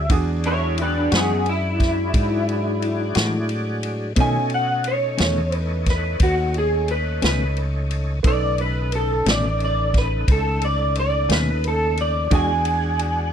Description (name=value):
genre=slow blues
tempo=59 BPM (dotted quarters)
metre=12/8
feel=straight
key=unclear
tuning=A4 = 440 Hz
part: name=electric guitar through a small old amp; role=melody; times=0.0-13.3 s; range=B3 to G#5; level=-22 LUFS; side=equal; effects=ensemble chorus
part: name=bright baby grand piano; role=accompaniment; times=0.0-13.3 s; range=A3 to A4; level=-31 LUFS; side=right 10 dB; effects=none
part: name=tonewheel organ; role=sustained chords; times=0.0-13.3 s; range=C#3 to F#4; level=-31 LUFS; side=left 1 dB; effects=slow rotary speaker, chorus vibrato
part: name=mellow fretless electric bass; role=bass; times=0.0-13.3 s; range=A1 to B2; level=-23 LUFS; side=equal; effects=none
part: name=vintage drum kit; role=drums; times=0.1-13.1 s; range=kick drum, ride cymbal, snare drum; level=-22 LUFS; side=equal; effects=none
part: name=clean electric guitar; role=accompaniment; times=1.1-12.5 s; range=B2 to F#4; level=-24 LUFS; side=left 4 dB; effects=harmonic tremolo
room=little or no reverb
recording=dry, close 1970s-style studio recording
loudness=-18 LUFS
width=side -8 dB against mid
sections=0.0-13.3 A section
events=clean electric guitar solo 0.0-13.3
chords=0.0 E9; 4.2 B9; 12.3 E9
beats=| 0.11 1.13 2.15 3.16 | 4.18 5.20 6.22 7.23 | 8.25 9.27 10.28 11.30 | 12.31